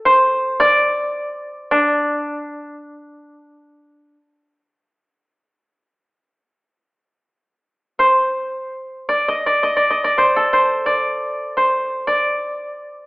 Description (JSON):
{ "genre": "japanese traditional, Japanese chamber music", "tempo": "free time", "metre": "none", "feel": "none", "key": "unclear", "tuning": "A4 = 440 Hz", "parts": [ { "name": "koto", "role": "solo", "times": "0.0-13.1 s", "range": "D4 to Eb5", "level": "-16 LUFS", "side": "equal", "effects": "none" } ], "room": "moderate recital hall reverb, RT60 1.5 s", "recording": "recorded in a church or concert hall, telephone sound", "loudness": "-15 LUFS", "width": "side -26 dB against mid", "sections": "0.0-6.6 A section; 6.6-13.1 A section", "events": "none", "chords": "none" }